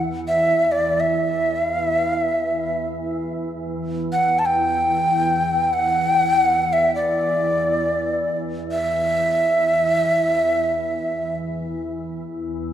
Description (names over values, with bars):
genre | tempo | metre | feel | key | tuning
world meditative, free-time meditation music | free time | none | none | E minor | A4 = 440 Hz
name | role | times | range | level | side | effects
soft additive organ-like pad | drone | 0.0-12.7 s | E2 | -26 LUFS | right 1 dB | ensemble chorus, built-in reverb
breathy mellow Native American-style cedar flute | melody | 0.3-11.4 s | D5 to A5 | -19 LUFS | equal | ping-pong delay
room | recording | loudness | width
wet recital hall reverb, RT60 1.7 s, small room ambience | cassette tape | -18 LUFS | side -10 dB against mid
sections
0.0-12.0 A section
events
none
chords
none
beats
free time